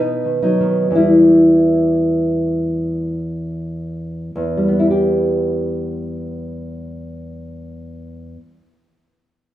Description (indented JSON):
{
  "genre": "romantic piece for solo classical guitar",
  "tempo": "49-63 BPM",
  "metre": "3/4",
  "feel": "rubato",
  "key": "E minor",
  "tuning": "A4 = 440 Hz",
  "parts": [
    { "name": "nylon-string guitar", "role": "solo", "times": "0.0-8.9 s", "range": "E2 to B4", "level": "-16 LUFS", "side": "equal", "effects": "none" }
  ],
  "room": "wet recital hall reverb, RT60 1.7 s",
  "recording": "none",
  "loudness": "-14 LUFS",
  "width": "side -13 dB against mid",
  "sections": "0.0-4.4 A section; 4.4-7.9 B section",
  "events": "slowing down 0.0-4.4",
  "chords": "0.0 B; 0.9 Em"
}